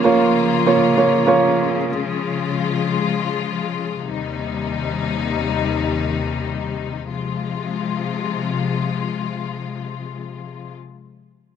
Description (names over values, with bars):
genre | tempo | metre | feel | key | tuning
piano-driven pop | free time | none | none | F minor | A4 = 440 Hz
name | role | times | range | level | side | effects
dark grand piano | accompaniment | 0.0-1.9 s | Db3 to Db5 | -15 LUFS | right 4 dB | none
clear studio string section | sustained chords | 0.0-10.7 s | Eb2 to F4 | -21 LUFS | left 6 dB | none
room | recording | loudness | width
small room ambience | dry, close 1970s-style studio recording | -18 LUFS | side -8 dB against mid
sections
0.0-7.1 A section; 7.1-10.0 B section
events
slowing down 1.9-7.1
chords
0.0 Bbm/Db; 1.9 Db; 4.1 Cm/Eb; 7.1 Fm